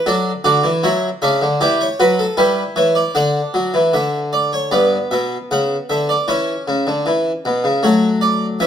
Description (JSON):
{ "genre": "classical, baroque-style 3-part fugue for harpsichord", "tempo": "77 BPM", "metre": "4/4", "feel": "straight", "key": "unclear", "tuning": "A4 = 439 Hz", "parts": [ { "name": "harpsichord", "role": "solo", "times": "0.0-8.7 s", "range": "G2 to F#5", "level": "-14 LUFS", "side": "equal", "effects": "none" } ], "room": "moderate large studio reverb, RT60 1.2 s", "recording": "none", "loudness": "-14 LUFS", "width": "side -9 dB against mid", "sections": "0.0-4.7 A section; 4.7-8.7 B section", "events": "none", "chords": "0.1 D; 1.6 Em; 3.2 Dmaj9; 4.7 Em7/G; 6.3 Bsus24; 7.8 Dmaj7/F#" }